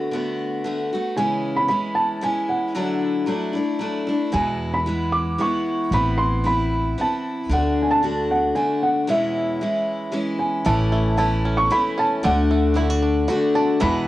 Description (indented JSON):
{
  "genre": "acoustic folk duo or small band",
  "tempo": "114 BPM",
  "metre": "3/4",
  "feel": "straight",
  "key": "unclear",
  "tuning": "A4 = 440 Hz",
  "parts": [
    { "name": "picked steel-string acoustic guitar", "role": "accompaniment", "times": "0.0-14.1 s", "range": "E2 to G#4", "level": "-22 LUFS", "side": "left 2 dB", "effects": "cassette tape" },
    { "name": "felt-muted upright piano", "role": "melody", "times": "1.2-14.1 s", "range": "E5 to D6", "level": "-22 LUFS", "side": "right 1 dB", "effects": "cassette tape" },
    { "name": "upright bass", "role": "bass", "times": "4.3-14.1 s", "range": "A1 to E2", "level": "-23 LUFS", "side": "equal", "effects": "none" },
    { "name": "bluegrass banjo", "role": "arpeggios", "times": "10.7-14.1 s", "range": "D3 to F#4", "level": "-29 LUFS", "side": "right 3 dB", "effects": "cassette tape" }
  ],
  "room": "moderate small room reverb, RT60 0.6 s",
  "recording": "home recording on cassette",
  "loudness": "-19 LUFS",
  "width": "side -15 dB against mid",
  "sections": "0.0-10.7 A section; 10.7-14.1 B section",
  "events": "break 9.1-10.7",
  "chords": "0.0 D6; 1.2 C#m; 2.8 Dadd9; 4.3 E; 5.9 Amadd9; 7.5 D; 9.1 E6; 10.7 A; 12.2 D"
}